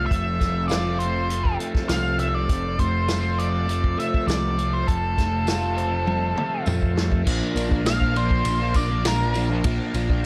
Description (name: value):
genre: psychedelic rock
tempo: 101 BPM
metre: 4/4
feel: straight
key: unclear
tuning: A4 = 442 Hz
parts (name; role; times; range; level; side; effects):
- octave-fuzz lead guitar; melody; 0.0-9.4 s; A4 to F5; -29 LUFS; equal; distortion, slapback echo
- combo organ; sustained chords; 0.0-10.3 s; A3 to Bb4; -36 LUFS; equal; none
- crunchy overdriven guitar; riff; 0.0-10.3 s; F2 to F4; -29 LUFS; equal; rotary speaker
- picked electric bass; bass; 0.0-10.3 s; F1 to F2; -28 LUFS; equal; none
- vintage drum kit; drums; 0.1-10.2 s; crash cymbal, hi-hat, kick drum, ride cymbal, snare drum, toms; -28 LUFS; equal; none
- tambourine; percussion; 0.7-10.1 s; none; -44 LUFS; equal; none
room: studio reverb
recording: none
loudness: -23 LUFS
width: mono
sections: 0.0-7.3 A section; 7.3-10.3 B section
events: drum fill 6.1-7.3; lead electric guitar solo 7.3-10.3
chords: 0.0 F; 7.3 Bb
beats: | 0.11 0.71 1.30 1.90 | 2.50 3.09 3.69 4.29 | 4.88 5.48 6.08 6.67 | 7.27 7.86 8.46 9.06 | 9.65 10.25